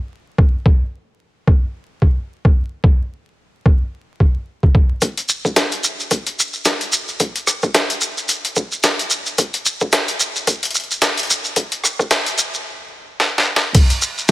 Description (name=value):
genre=glitch hop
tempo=110 BPM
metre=4/4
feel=swing 57% on 16ths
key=none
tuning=none
part: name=electronic kick drum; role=drums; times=0.4-13.9 s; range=none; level=-13 LUFS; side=equal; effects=high-pass filter on kick
part: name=boom bap sampler-style drum kit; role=drums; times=5.0-14.3 s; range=crash cymbal, hi-hat, rim click, snare drum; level=-18 LUFS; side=equal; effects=high-pass filter on hats, high-pass filter on snare, high-pass filter on cymbals
part: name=shekere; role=percussion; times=5.0-14.3 s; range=none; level=-20 LUFS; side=equal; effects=none
room=light reverb, digital ambience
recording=vinyl crackle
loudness=-15 LUFS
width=side -17 dB against mid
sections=0.0-5.0 A section; 5.0-13.7 B section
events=build-up 5.0-13.7; drum fill 13.2-13.7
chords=none